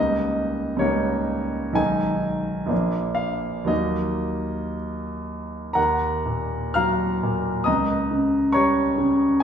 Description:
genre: classical, romantic character piece for solo piano.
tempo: 56-71 BPM.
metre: 2/4.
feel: rubato.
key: Eb minor.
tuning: A4 = 441 Hz.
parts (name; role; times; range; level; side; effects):
clear grand piano; solo; 0.0-9.4 s; Bb1 to F6; -21 LUFS; equal; none.
room: wet large studio reverb, RT60 1.4 s.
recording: heard from further back in the room.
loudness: -21 LUFS.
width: side -8 dB against mid.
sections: 0.0-5.8 A section; 5.8-9.4 A section.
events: none.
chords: 0.0 Eb7/Db; 1.8 Abm/Cb; 2.7 Bb; 3.7 Ebm; 7.7 Eb7/Db.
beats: 0.83 | 1.78 2.71 | 3.70 4.76 | 5.77 6.76 | 7.67 8.54 | 9.42.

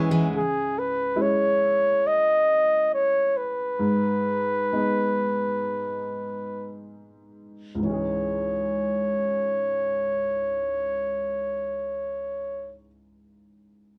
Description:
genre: acoustic folk-pop ballad.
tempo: 53-71 BPM.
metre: 4/4.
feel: straight.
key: C# minor.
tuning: A4 = 439 Hz.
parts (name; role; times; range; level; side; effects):
warm upright piano; accompaniment; 0.0-14.0 s; C#2 to G#5; -32 LUFS; equal; none.
mellow flugelhorn; melody; 0.4-12.8 s; G#4 to D#5; -26 LUFS; equal; none.
room: light reverb.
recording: dark, warm production.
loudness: -25 LUFS.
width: mono.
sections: 0.3-7.8 A section; 7.8-12.4 B section.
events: slowing down 0.3-7.8.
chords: 0.3 C#m; 3.8 G#m; 7.8 C#m.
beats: | 0.31 1.15 2.01 2.89 | 3.79 4.73 5.71 6.75 | 7.85 8.98 10.11 11.25.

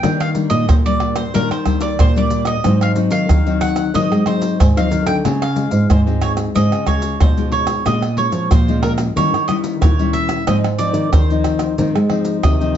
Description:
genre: samba and choro.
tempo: 92 BPM.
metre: 4/4.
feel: straight.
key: unclear.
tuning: A4 = 440 Hz.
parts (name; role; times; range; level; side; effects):
bowl-back mandolin; melody; 0.0-12.8 s; Bb4 to G5; -22 LUFS; right 4 dB; none.
nylon-string guitar; accompaniment; 0.0-12.8 s; Ab2 to F4; -20 LUFS; left 6 dB; none.
nylon-string guitar; bass; 0.0-12.8 s; Ab2 to Ab3; -19 LUFS; right 2 dB; none.
maracas, surdo, pandeiro and tamborim; percussion; 0.0-12.8 s; none; -17 LUFS; right 1 dB; none.
room: wet studio reverb, RT60 0.6 s.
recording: heard from further back in the room, nothing above 7.8 kHz.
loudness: -14 LUFS.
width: side -10 dB against mid.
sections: 0.0-12.8 A section.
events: none.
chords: 0.0 Ebmaj7; 2.6 Ab7; 5.2 Dbmaj7; 7.9 Bbm7; 9.2 Eb7b9; 10.5 Ab6.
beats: | 0.03 0.68 1.34 1.99 | 2.64 3.29 3.94 4.60 | 5.25 5.90 6.55 7.21 | 7.86 8.51 9.16 9.82 | 10.47 11.12 11.78 12.43.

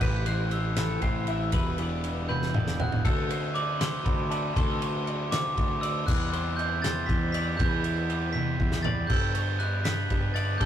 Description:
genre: math rock and midwest emo.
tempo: 79 BPM (dotted quarters).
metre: 6/8.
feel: straight.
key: unclear.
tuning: A4 = 440 Hz.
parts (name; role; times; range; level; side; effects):
glockenspiel with soft plastic mallets; melody; 0.0-10.7 s; A5 to B6; -32 LUFS; right 1 dB; none.
twelve-string electric guitar; accompaniment; 0.0-3.1 s; E2 to G4; -33 LUFS; right 1 dB; none.
twelve-string electric guitar; arpeggios; 0.0-10.7 s; A4 to F#5; -36 LUFS; left 3 dB; spring reverb, slapback echo.
cranked stack guitar; riff; 0.0-10.7 s; D3 to F#4; -39 LUFS; equal; overdrive.
fuzz fingered electric bass; bass; 0.0-10.7 s; E1 to G2; -30 LUFS; equal; overdrive.
loose indie drum kit; drums; 0.0-10.7 s; crash cymbal, kick drum, ride cymbal, snare drum, toms; -29 LUFS; equal; none.
room: moderate booth ambience, RT60 0.2 s.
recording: rough rehearsal-room recording, tube saturation.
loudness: -25 LUFS.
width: side -10 dB against mid.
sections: 0.0-3.0 A section; 3.0-10.7 B section.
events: drum fill 2.3-3.0, 8.3-9.1.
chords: 0.0 Am9; 1.5 Em7; 3.0 D7; 6.1 Cmaj9/E; 9.1 Gadd9.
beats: | 0.01 0.77 | 1.53 2.29 | 3.05 3.81 | 4.56 5.32 | 6.07 6.83 | 7.58 8.34 | 9.09 9.85 | 10.60.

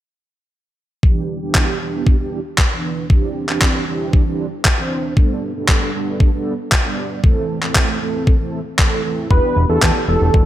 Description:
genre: italo disco.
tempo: 116 BPM.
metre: 4/4.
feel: straight.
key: E minor.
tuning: A4 = 440 Hz.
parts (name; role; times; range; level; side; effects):
mellow synth brass; stabs; 1.0-10.4 s; E3 to D5; -22 LUFS; right 3 dB; chorus, ping-pong delay.
electronic kick drum; drums; 1.0-10.4 s; none; -14 LUFS; equal; none.
electronic handclaps; drums; 1.5-9.9 s; none; -19 LUFS; equal; gated reverb.
wide unison lead; melody; 9.3-10.4 s; A4 to B4; -18 LUFS; equal; tape echo.
fat analog bass; bass; 9.3-10.4 s; D1 to E2; -16 LUFS; equal; none.
room: light reverb, digital ambience.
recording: none.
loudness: -15 LUFS.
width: side -13 dB against mid.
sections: 1.0-10.5 A section.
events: filter sweep on analog polysynth 1.0-10.5.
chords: 1.0 Em7; 3.1 Cadd9/E; 5.2 Gadd9; 7.2 Am; 9.3 Em7.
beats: | 1.03 1.55 2.07 2.58 | 3.10 3.62 4.13 4.65 | 5.17 5.69 6.20 6.72 | 7.24 7.75 8.27 8.79 | 9.31 9.82 10.34.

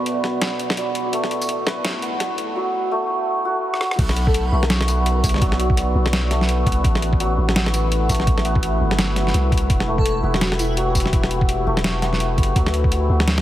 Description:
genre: half-time drum and bass.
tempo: 168 BPM.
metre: 4/4.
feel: swing 59% on 16ths, half-time.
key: B minor.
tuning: A4 = 441 Hz.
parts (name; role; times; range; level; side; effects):
deep dark ambient pad; sustained chords; 0.0-13.4 s; A3 to F#5; -28 LUFS; left 2 dB; chorus, built-in reverb, sidechain pumping.
santur; arpeggios; 0.0-13.4 s; F#3 to B4; -24 LUFS; equal; digital delay.
pulsing gated texture; texture; 0.0-2.6 s; D5; -31 LUFS; right 8 dB; chorus, built-in reverb.
boom bap sampler-style drum kit; drums; 0.1-13.4 s; crash cymbal, hi-hat, rim click, snare drum, tambourine; -24 LUFS; equal; high-pass filter on snare, small room reverb, high-pass filter on toms, high-pass filter on hats, high-pass filter on perc, high-pass filter on cymbals.
long sustained 808-style bass; bass; 4.0-13.4 s; E1 to D2; -20 LUFS; equal; none.
electronic kick drum; drums; 4.0-12.9 s; none; -19 LUFS; equal; small room reverb.
airy dreamy lead; melody; 4.3-4.7, 10.0-10.7 s; E4 to B4; -29 LUFS; left 1 dB; chorus, digital delay.
room: light reverb, digital ambience.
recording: heavily compressed radio sound, multiband compression, high-pass filter.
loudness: -17 LUFS.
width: side -13 dB against mid.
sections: 0.0-4.0 A section; 4.0-13.4 B section.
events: build-up 0.0-4.0; drum fill 3.7; drop 4.0-13.4.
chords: 0.0 Bm; 1.1 A5; 4.0 Bm; 6.8 Am; 9.7 Em; 12.6 D.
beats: 0.06 0.42 0.77 | 1.13 1.49 1.84 2.20 | 2.56 2.92 3.27 3.63 | 3.99 4.34 4.70 5.06 | 5.42 5.77 6.13 6.49 | 6.84 7.20 7.56 7.92 | 8.27 8.63 8.99 9.34 | 9.70 10.06 10.42 10.77 | 11.13 11.49 11.84 12.20 | 12.56 12.92 13.27.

